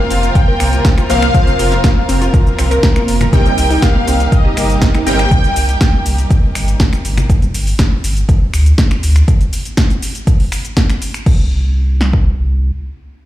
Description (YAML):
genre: progressive house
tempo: 121 BPM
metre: 4/4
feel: straight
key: C minor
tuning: A4 = 444 Hz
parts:
  - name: wide unison lead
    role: melody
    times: 0.0-6.0 s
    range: Eb5 to G5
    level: -21 LUFS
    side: equal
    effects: wide subtle chorus, digital delay
  - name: rich studio violin section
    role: second line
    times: 0.0-6.0 s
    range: Eb5 to G5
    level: -26 LUFS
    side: left 2 dB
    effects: sidechain pumping, digital delay
  - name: rich studio string section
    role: sustained chords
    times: 0.0-7.3 s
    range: C3 to Bb4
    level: -22 LUFS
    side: right 1 dB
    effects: sidechain pumping
  - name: wide unison pluck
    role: arpeggios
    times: 0.0-5.2 s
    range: Bb3 to Bb4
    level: -21 LUFS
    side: right 1 dB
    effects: sidechain pumping, digital delay
  - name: supersaw stab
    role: stabs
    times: 0.0-5.2 s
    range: C3 to C5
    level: -22 LUFS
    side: left 2 dB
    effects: lush chorus, sidechain pumping, digital delay
  - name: saturated sub bass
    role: bass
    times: 0.1-12.7 s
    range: F1 to D2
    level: -13 LUFS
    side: equal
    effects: tube saturation, sidechain pumping
  - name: deep house drum kit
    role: drums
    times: 0.1-11.4 s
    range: crash cymbal, finger snaps, hi-hat, shaker, snare drum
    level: -21 LUFS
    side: equal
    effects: overdrive
  - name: deep house drum kit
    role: drums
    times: 0.4-12.2 s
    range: kick drum, snare drum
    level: -12 LUFS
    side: equal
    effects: overdrive
  - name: congas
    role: percussion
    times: 1.3-7.5 s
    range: none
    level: -22 LUFS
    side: left 2 dB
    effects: none
room: digital ambience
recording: played on a big sound system in a bare room, large studio reverb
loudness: -11 LUFS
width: side -14 dB against mid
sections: 0.0-11.3 A section; 11.3-13.3 B section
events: drop 0.0-11.3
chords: 0.0 Fsus4; 3.3 Cm7; 7.3 G5; 9.3 N.C.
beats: 0.35 0.85 | 1.35 1.84 2.34 2.83 | 3.33 3.83 4.32 4.82 | 5.31 5.81 6.30 6.80 | 7.30 7.79 8.29 8.78 | 9.28 9.78 10.27 10.77 | 11.26 11.76 12.26